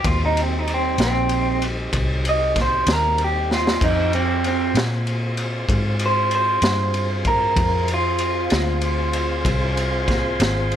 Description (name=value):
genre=slow blues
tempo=64 BPM (dotted quarters)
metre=12/8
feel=straight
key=unclear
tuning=A4 = 439 Hz
part: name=electric guitar through a small old amp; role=melody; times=0.0-9.8 s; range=C4 to Eb5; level=-21 LUFS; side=right 2 dB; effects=none
part: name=vintage muted fingered electric bass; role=bass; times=0.0-10.8 s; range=Ab1 to Bb2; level=-23 LUFS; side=equal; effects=none
part: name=raw garage drum kit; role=drums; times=0.0-10.8 s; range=crash cymbal, kick drum, ride cymbal, snare drum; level=-24 LUFS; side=equal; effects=none
part: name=tonewheel organ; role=sustained chords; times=0.1-10.8 s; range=G3 to C5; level=-28 LUFS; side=equal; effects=slow rotary speaker
room=light reverb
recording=none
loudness=-18 LUFS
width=side -10 dB against mid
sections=0.0-10.8 A section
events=clean electric guitar solo 0.0-10.8; drum fill 3.5-3.8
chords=0.0 Cm; 3.8 Fm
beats=| 0.05 0.99 1.93 2.87 | 3.81 4.75 5.69 6.63 | 7.57 8.51 9.45 10.39